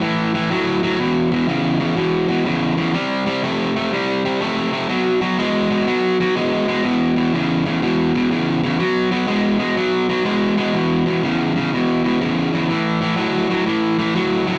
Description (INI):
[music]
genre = blues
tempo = 123 BPM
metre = 4/4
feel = swing 66% on 8ths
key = unclear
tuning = A4 = 441 Hz
[part]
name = overdriven semi-hollow guitar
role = solo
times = 0.0-14.6 s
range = E2 to A3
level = -19 LUFS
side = equal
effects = none
[sound]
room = moderate large studio reverb, RT60 1.1 s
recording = none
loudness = -19 LUFS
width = mono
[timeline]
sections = 0.0-10.7 A section; 10.7-14.6 A section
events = none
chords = 0.0 A5; 1.0 E5; 2.9 C5; 4.9 B5; 6.8 E5; 8.8 B5; 10.7 E5; 12.7 A5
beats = 0.02 0.51 | 1.00 1.49 1.97 2.46 | 2.95 3.44 3.92 4.41 | 4.90 5.38 5.87 6.36 | 6.85 7.33 7.82 8.31 | 8.80 9.29 9.77 10.26 | 10.75 11.23 11.72 12.21 | 12.70 13.18 13.67 14.16